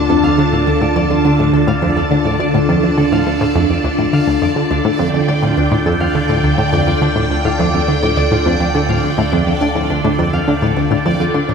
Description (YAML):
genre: ambient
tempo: 104 BPM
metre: 4/4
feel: straight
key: D minor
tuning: A4 = 438 Hz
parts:
  - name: phased string machine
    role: sustained chords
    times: 0.0-11.5 s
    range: D3 to A5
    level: -16 LUFS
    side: equal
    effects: ensemble chorus, phaser
  - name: concert harp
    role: arpeggios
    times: 0.0-11.5 s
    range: D4 to D6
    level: -23 LUFS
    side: left 3 dB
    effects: auto-pan, ping-pong delay
  - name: warm sub bass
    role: bass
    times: 0.0-11.5 s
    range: D2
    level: -24 LUFS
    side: equal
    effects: none
  - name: bubbling stepped-filter texture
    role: texture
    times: 0.0-11.5 s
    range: D5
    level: -25 LUFS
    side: right 3 dB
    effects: chorus, built-in reverb
  - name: tight sequenced synth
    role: riff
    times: 0.1-11.5 s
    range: D2 to D3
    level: -16 LUFS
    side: equal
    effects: chorus, ping-pong delay
room: wet plate reverb, RT60 3.0 s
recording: dreamy mix soaked in reverb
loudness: -12 LUFS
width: side -6 dB against mid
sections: 0.0-11.5 A section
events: none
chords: 0.0 Dm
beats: | 0.09 0.67 1.25 1.82 | 2.40 2.98 3.55 4.13 | 4.71 5.29 5.86 6.44 | 7.02 7.59 8.17 8.75 | 9.32 9.90 10.48 11.05